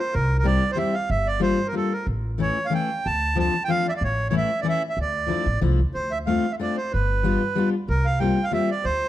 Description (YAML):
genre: musette waltz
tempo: 187 BPM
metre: 3/4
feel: straight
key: D minor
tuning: A4 = 440 Hz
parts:
  - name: accordion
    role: melody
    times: 0.0-9.1 s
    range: A4 to A5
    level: -25 LUFS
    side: right 3 dB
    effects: none
  - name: upright bass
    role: bass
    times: 0.1-9.1 s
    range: G1 to D2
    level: -24 LUFS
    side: equal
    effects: none
  - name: fingerpicked steel-string acoustic guitar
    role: accompaniment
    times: 0.4-8.7 s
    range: E3 to G4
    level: -25 LUFS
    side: left 4 dB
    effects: none
room: light reverb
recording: close, detailed microphones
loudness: -21 LUFS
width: side -13 dB against mid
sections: 0.0-5.9 A section; 5.9-9.1 B section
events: none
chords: 0.1 C; 1.1 Gm7; 2.1 A; 3.1 Dm7; 4.0 A; 5.0 Dmadd9; 5.9 Dm7; 6.9 G7; 7.9 C7sus4